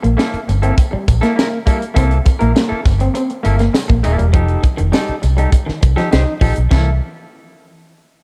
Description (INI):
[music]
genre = funk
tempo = 101 BPM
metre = 4/4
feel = straight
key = C mixolydian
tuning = A4 = 436 Hz
[part]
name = electric guitar at the edge of break-up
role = accompaniment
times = 0.0-6.9 s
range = Bb3 to C5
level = -24 LUFS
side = equal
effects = none
[part]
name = electric guitar through a small old amp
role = riff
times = 0.0-6.9 s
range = Eb3 to C4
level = -24 LUFS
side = equal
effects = spring reverb
[part]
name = vintage muted fingered electric bass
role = bass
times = 0.0-7.0 s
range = Eb1 to C2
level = -17 LUFS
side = equal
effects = none
[part]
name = tight funk drum kit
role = drums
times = 0.0-6.9 s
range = crash cymbal, hi-hat, kick drum, snare drum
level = -17 LUFS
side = equal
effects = none
[part]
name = tambourine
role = percussion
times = 0.2-7.0 s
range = none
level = -41 LUFS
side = equal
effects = none
[sound]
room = light reverb, studio ambience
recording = dark, warm production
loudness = -15 LUFS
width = mono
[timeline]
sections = 0.0-6.7 A section; 6.7-8.2 B section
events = none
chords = 0.0 C6; 4.3 F9; 6.7 C6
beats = 0.19 0.78 1.37 | 1.97 2.56 3.15 3.75 | 4.34 4.93 5.53 6.12 | 6.71